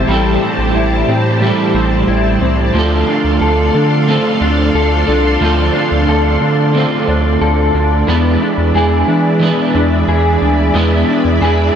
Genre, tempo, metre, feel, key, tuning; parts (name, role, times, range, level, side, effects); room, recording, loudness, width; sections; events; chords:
dream pop; 90 BPM; 4/4; straight; A4 = 439 Hz
electric guitar at the edge of break-up; accompaniment; 0.0-11.8 s; A2 to B4; -17 LUFS; right 5 dB; tremolo, wide subtle chorus
string machine, cellos; sustained chords; 0.0-11.8 s; G4 to C6; -18 LUFS; equal; ensemble chorus
electric guitar through a small old amp; arpeggios; 0.0-11.8 s; F3 to A4; -16 LUFS; left 3 dB; analog chorus, ping-pong delay
saturated sub bass; bass; 0.0-11.7 s; A1 to E3; -15 LUFS; equal
moderate plate reverb, RT60 3.0 s; nothing above 10.8 kHz; -11 LUFS; side -8 dB against mid
0.0-11.8 A section
0.0 Am7; 2.7 Dm7; 8.1 E7